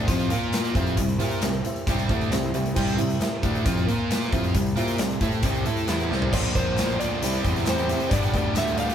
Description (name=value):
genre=classic rock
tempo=135 BPM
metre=4/4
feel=straight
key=C major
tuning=A4 = 442 Hz
part: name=dark upright piano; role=accompaniment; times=0.0-8.9 s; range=Bb3 to G5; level=-32 LUFS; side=right 2 dB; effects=none
part: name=biting overdriven guitar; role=riff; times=0.0-8.9 s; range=G2 to Bb4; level=-30 LUFS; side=left 5 dB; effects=none
part: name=distorted electric guitar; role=riff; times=0.0-8.9 s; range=G2 to Bb4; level=-30 LUFS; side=right 6 dB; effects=overdrive
part: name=fuzz picked electric bass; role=bass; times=0.0-8.9 s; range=G1 to Bb2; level=-28 LUFS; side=equal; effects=overdrive
part: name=big rock drum kit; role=drums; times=0.1-8.9 s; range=crash cymbal, hi-hat, kick drum, snare drum, toms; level=-26 LUFS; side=equal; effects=none
part: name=group handclap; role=percussion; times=0.5-8.7 s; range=none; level=-43 LUFS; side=left 2 dB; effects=none
part: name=electric slide guitar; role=melody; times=6.6-8.9 s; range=C5 to F5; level=-28 LUFS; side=equal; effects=none
room=light reverb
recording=band playing live in one room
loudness=-21 LUFS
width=side -9 dB against mid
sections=0.0-6.3 A section; 6.3-8.9 B section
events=drum fill 6.1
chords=0.3 Bb5; 0.8 C; 3.9 Bb5; 4.3 C; 6.3 Bbadd9; 7.2 C; 8.1 G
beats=0.09 0.54 | 0.98 1.43 1.87 2.32 | 2.77 3.21 3.66 4.10 | 4.55 5.00 5.44 5.89 | 6.33 6.78 7.22 7.67 | 8.11 8.56